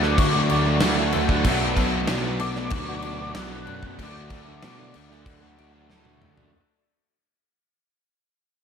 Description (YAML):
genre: rock, shoegaze and dream pop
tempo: 95 BPM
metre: 4/4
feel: straight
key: D major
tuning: A4 = 442 Hz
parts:
  - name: warm velvety synth lead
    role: melody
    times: 0.0-5.9 s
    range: D6 to F#6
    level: -32 LUFS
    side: left 1 dB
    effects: chorus, analog delay
  - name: twelve-string electric guitar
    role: arpeggios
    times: 0.0-6.5 s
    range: A3 to F#4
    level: -33 LUFS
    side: left 7 dB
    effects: ensemble chorus, analog delay
  - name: crunchy overdriven guitar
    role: riff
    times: 0.0-6.5 s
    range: B2 to D4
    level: -32 LUFS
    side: equal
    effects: ensemble chorus
  - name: overdriven electric guitar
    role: riff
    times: 0.0-6.5 s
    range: B2 to F#4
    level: -31 LUFS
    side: left 8 dB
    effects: wide subtle chorus
  - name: overdriven semi-hollow guitar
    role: riff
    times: 0.0-6.5 s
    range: B2 to D4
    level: -29 LUFS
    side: right 9 dB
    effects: reverse reverb
  - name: modern bright picked electric bass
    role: bass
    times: 0.0-6.5 s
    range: B1 to B2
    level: -28 LUFS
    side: equal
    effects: none
  - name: gated 80s drum kit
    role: drums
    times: 0.0-6.5 s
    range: crash cymbal, kick drum, snare drum, toms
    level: -26 LUFS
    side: equal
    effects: none
room: moderate plate reverb, RT60 1.4 s, small room ambience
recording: dreamy mix soaked in reverb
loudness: -20 LUFS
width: side -7 dB against mid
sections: 0.0-6.5 A section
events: fade-out 0.0-6.5; drum fill 5.9-6.5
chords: 0.0 D; 1.5 Bm7; 4.0 D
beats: 0.18 0.82 | 1.45 2.09 2.72 3.36 | 3.99 4.62 5.25 5.89